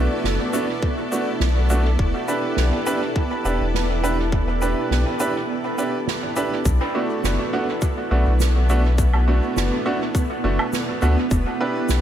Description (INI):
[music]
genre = ambient dub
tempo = 103 BPM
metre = 4/4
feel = swing 54% on 16ths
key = unclear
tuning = A4 = 440 Hz
[part]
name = granular cloud pad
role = sustained chords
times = 0.0-12.0 s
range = B3 to D5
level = -26 LUFS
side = equal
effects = built-in reverb
[part]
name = bright upright piano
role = stabs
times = 0.0-12.0 s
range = A3 to B4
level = -24 LUFS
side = right 2 dB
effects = dub echo
[part]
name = warm sub bass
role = bass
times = 0.0-12.0 s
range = E1 to D2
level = -19 LUFS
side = equal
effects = tube saturation
[part]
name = snare drum, shaker and woodblock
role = drums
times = 0.2-12.0 s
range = none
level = -30 LUFS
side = right 4 dB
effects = dub echo
[part]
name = electronic kick drum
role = drums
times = 0.8-11.4 s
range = none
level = -22 LUFS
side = equal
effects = none
[sound]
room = light reverb, small room ambience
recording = none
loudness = -19 LUFS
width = side -10 dB against mid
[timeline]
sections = 0.0-6.7 A section; 6.7-12.0 B section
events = break 5.5-6.7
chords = 0.0 Bm7; 2.0 Em7; 6.7 Bm7; 11.3 Em7